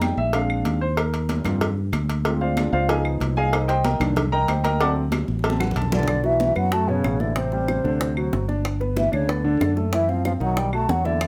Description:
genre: Afro-Cuban jazz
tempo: 188 BPM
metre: 4/4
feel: straight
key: B minor from 6.1 s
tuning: A4 = 441 Hz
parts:
  - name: warm grand piano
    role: accompaniment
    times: 0.0-11.3 s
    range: B2 to D6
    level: -27 LUFS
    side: equal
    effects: none
  - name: fingered electric bass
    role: bass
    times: 0.0-11.3 s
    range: G1 to G2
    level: -27 LUFS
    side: equal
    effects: none
  - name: claves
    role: percussion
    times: 0.0-11.3 s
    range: none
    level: -36 LUFS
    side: equal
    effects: none
  - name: congas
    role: percussion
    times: 0.0-11.3 s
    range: none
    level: -32 LUFS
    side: equal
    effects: none
  - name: cowbell and bongos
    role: percussion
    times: 0.0-11.3 s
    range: none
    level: -31 LUFS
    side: equal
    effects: none
  - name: mellow hollow concert flute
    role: melody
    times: 5.9-11.3 s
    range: C5 to A5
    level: -28 LUFS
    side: equal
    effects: none
  - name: warm trombone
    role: second line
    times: 5.9-11.3 s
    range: C3 to A3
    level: -32 LUFS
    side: equal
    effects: tape echo
room: moderate studio ambience, RT60 0.5 s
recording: none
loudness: -22 LUFS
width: mono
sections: 0.0-6.1 A section; 6.1-11.3 B section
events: grand piano solo 0.0-6.1; drum fill 5.3-6.1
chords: 0.3 Bb7; 1.0 Eb6; 2.3 Dm7b5; 2.9 C#9; 3.5 Cm7; 4.8 D7; 6.1 Bsus2; 7.4 Am7; 8.0 D7; 8.6 Gadd9; 9.9 D#m69; 10.6 B

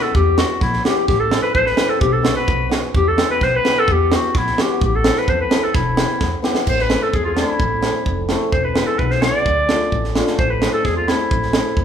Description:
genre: klezmer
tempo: 129 BPM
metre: 2/4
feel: straight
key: E harmonic minor, A harmonic minor from 6.7 s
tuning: A4 = 441 Hz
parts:
  - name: clear clarinet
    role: melody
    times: 0.0-11.8 s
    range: E4 to D5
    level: -19 LUFS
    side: left 1 dB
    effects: none
  - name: hammered dulcimer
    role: accompaniment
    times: 0.0-11.7 s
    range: G#3 to A4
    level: -23 LUFS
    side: left 1 dB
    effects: none
  - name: upright bass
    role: bass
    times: 0.1-11.8 s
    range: E1 to E2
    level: -23 LUFS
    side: left 1 dB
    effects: none
  - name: tight funk drum kit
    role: drums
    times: 0.1-11.8 s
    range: crash cymbal, kick drum, snare drum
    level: -20 LUFS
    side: right 2 dB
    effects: none
room: wet large studio reverb, RT60 1.1 s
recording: band playing live in one room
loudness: -15 LUFS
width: side -8 dB against mid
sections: 0.0-6.7 A section; 6.7-11.8 B section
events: drum fill 6.2-6.7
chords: 0.0 Em; 1.1 Am; 2.0 B; 2.9 Em; 4.8 Am; 5.7 Em; 6.7 Am; 8.5 E; 9.5 Dm; 10.4 Am

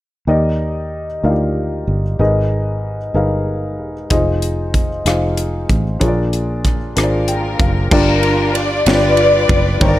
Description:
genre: slow gospel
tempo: 63 BPM (dotted quarters)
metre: 6/8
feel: straight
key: Eb major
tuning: A4 = 441 Hz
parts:
  - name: warm upright piano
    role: accompaniment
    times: 0.3-10.0 s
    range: G2 to G5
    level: -19 LUFS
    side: left 1 dB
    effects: none
  - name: fingered electric bass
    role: bass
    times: 0.3-10.0 s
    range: Fb1 to Eb2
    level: -18 LUFS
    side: equal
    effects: none
  - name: crisp fusion drum kit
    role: drums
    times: 4.1-10.0 s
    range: crash cymbal, hi-hat, kick drum, ride cymbal, rim click, snare drum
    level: -18 LUFS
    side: equal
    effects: none
  - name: warm studio string section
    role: melody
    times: 7.0-10.0 s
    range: D4 to D5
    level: -16 LUFS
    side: left 1 dB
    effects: none
room: small room reverb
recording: none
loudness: -14 LUFS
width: side -14 dB against mid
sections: 0.3-7.9 A section; 7.9-10.0 B section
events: upright piano fill 7.0-7.9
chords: 0.3 Ebmaj7; 2.2 Abmadd9; 4.1 Fm7; 6.0 Bb7; 7.9 Gm7; 8.9 G7

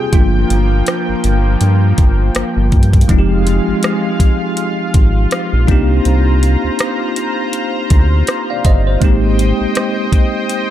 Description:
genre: contemporary R&B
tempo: 81 BPM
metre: 4/4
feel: swing 58% on 16ths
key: F dorian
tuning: A4 = 442 Hz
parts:
  - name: bell-like tine electric piano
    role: accompaniment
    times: 0.0-10.7 s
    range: F3 to F5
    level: -18 LUFS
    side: equal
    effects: fast stereo tremolo
  - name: lush unison pad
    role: sustained chords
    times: 0.0-10.7 s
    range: F3 to Bb5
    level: -21 LUFS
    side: left 1 dB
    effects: chorus
  - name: round analog bass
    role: bass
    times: 0.1-9.7 s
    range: F1 to G2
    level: -13 LUFS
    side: equal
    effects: none
  - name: trap drum kit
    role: drums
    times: 0.1-10.7 s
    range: hi-hat, kick drum, rim click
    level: -13 LUFS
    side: equal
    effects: none
room: little or no reverb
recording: dark, warm production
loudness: -11 LUFS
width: side -12 dB against mid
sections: 0.0-3.1 A section; 3.1-10.7 B section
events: tine electric piano solo 0.0-3.1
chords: 0.1 Gm7; 3.1 Fm7; 5.7 Cm7; 9.0 Abmaj7

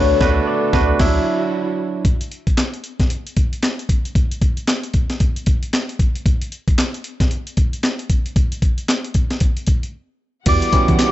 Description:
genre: R&B, new jack swing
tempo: 114 BPM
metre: 4/4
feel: swing 61% on 16ths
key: E dorian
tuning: A4 = 440 Hz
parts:
  - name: soft struck synth lead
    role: melody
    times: 0.0-1.5, 10.5-11.1 s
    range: C#5 to D6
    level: -21 LUFS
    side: left 6 dB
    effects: chorus, phaser
  - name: barky tine electric piano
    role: accompaniment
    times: 0.0-2.1, 10.5-11.1 s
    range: F#3 to D5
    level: -19 LUFS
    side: right 6 dB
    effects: none
  - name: warm studio string section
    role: sustained chords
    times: 0.0-2.0, 10.5-11.1 s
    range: D3 to F#5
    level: -28 LUFS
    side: left 1 dB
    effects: none
  - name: round analog bass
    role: bass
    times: 0.0-1.2, 10.5-11.1 s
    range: D2 to E3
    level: -20 LUFS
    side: equal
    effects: none
  - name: breakbeat sampler-style drum kit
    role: drums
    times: 0.2-11.1 s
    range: crash cymbal, handclaps, hi-hat, kick drum, snare drum, tambourine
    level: -17 LUFS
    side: equal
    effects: none
room: little or no reverb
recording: nothing above 7.9 kHz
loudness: -16 LUFS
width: side -14 dB against mid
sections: 0.0-2.0 A section; 2.0-10.5 B section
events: break 0.0-2.0, 9.9-10.5; band accent 0.0-2.0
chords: 0.0 Bm7/D; 1.0 Dmaj9; 2.0 N.C.; 10.5 Em9

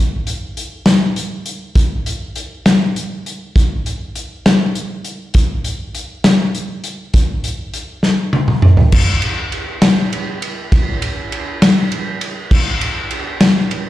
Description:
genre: rock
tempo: 67 BPM (dotted quarters)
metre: 6/8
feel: straight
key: none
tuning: none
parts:
  - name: loose indie drum kit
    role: drums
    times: 0.3-13.8 s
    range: crash cymbal, hi-hat, kick drum, ride cymbal, snare drum, toms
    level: -14 LUFS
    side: equal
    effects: none
room: wet club reverb, RT60 0.6 s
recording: live gig heard through the venue's PA, recital hall reverb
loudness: -14 LUFS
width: side -14 dB against mid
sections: 0.0-8.9 A section; 8.9-13.9 B section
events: drum fill 8.0-8.9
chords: none

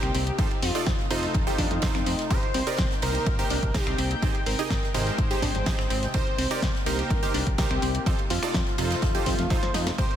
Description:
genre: progressive house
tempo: 125 BPM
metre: 4/4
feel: straight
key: unclear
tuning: A4 = 440 Hz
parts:
  - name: plucky unison lead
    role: melody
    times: 0.0-10.2 s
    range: Eb4 to C5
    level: -32 LUFS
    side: equal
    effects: dub echo
  - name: lush unison pad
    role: sustained chords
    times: 0.0-10.2 s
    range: C3 to G5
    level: -35 LUFS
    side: left 1 dB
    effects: chorus, sidechain pumping
  - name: wide unison pluck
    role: arpeggios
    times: 0.0-10.0 s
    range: C3 to C5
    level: -33 LUFS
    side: equal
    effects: sidechain pumping, dub echo
  - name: supersaw stab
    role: stabs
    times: 0.0-10.1 s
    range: Eb4 to Eb5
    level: -32 LUFS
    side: right 5 dB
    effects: sidechain pumping, dub echo
  - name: fat analog bass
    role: bass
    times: 0.0-10.1 s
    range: F1 to Ab2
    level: -30 LUFS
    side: equal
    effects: tube saturation, sidechain pumping
  - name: house drum kit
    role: drums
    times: 0.0-10.2 s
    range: finger snaps, hi-hat, snare drum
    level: -33 LUFS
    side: left 1 dB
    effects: sidechain pumping on hats, sidechain pumping on cymbals
  - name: big rock drum kit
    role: drums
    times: 0.1-10.1 s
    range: ride cymbal, snare drum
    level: -38 LUFS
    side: right 2 dB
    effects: high-pass filter on cymbals, high-pass filter on snare, high-pass filter on room
  - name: electronic kick drum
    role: drums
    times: 0.4-10.1 s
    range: none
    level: -27 LUFS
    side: equal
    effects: none
room: light reverb, digital ambience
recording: dense, heavily limited modern master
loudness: -23 LUFS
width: side -10 dB against mid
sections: 0.0-10.2 A section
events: drum fill 9.5-10.0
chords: 0.4 F7; 2.3 Cm7; 4.2 Abmaj7; 6.1 Cm7; 8.1 F7

